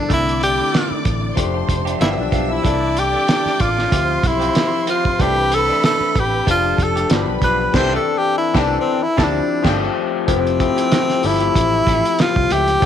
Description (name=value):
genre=lush 1970s-style soul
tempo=94 BPM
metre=4/4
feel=swing 54% on 16ths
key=C major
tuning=A4 = 440 Hz
part: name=breathy tenor saxophone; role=melody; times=0.0-12.9 s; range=C4 to C5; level=-18 LUFS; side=equal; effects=none
part: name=warm symphonic violin section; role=second line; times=0.0-9.9 s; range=G4 to E6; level=-27 LUFS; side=right 1 dB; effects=none
part: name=barky tine electric piano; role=accompaniment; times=0.0-12.9 s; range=D3 to E5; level=-22 LUFS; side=left 11 dB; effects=overdrive, lush chorus
part: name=electric guitar through a small old amp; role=riff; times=0.1-12.9 s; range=E3 to A4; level=-29 LUFS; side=right 12 dB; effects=phaser
part: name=vintage muted fingered electric bass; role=bass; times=0.1-12.9 s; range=F1 to D2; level=-23 LUFS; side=right 2 dB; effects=none
part: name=cloth-damped thuddy drum kit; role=drums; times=0.1-12.9 s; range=crash cymbal, hi-hat, kick drum, snare drum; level=-20 LUFS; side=right 2 dB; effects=none
room=light reverb, small room ambience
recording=1960s-style stereo with parts hard left and right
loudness=-15 LUFS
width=side -9 dB against mid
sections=0.0-10.3 A section; 10.3-12.9 B section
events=tenor saxophone solo 0.0-10.3; band accent 7.7-10.3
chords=0.1 C69; 1.4 F69; 2.0 G7; 2.6 C69; 3.9 Dm11; 5.2 C69; 6.5 F69; 7.1 G7; 7.7 C69; 9.0 Dm11; 9.6 G9sus4; 10.3 Fmaj9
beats=| 0.10 0.74 1.37 2.01 | 2.65 3.28 3.92 4.56 | 5.19 5.83 6.47 7.10 | 7.74 8.38 9.01 9.65 | 10.28 10.92 11.55 12.19 | 12.82